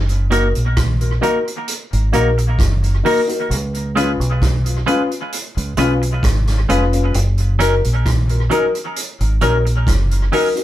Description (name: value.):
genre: roots reggae.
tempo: 66 BPM.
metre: 4/4.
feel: straight.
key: F# major.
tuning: A4 = 444 Hz.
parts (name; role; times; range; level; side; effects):
deep dub fingered electric bass; bass; 0.0-10.3 s; E#1 to C#2; -16 LUFS; equal; none.
vintage drum kit; drums; 0.1-10.6 s; hi-hat, kick drum, rim click; -22 LUFS; right 1 dB; analog delay.
semi-hollow electric guitar; accompaniment; 0.3-10.5 s; F#3 to B4; -22 LUFS; right 2 dB; analog delay.
dark upright piano; stabs; 0.3-10.6 s; C#4 to B4; -18 LUFS; left 4 dB; none.
room: moderate studio ambience, RT60 0.5 s.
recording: band playing live in one room.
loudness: -14 LUFS.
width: side -13 dB against mid.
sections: 0.0-10.6 A section.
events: none.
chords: 0.0 F#6; 3.5 C#7; 7.1 F#6.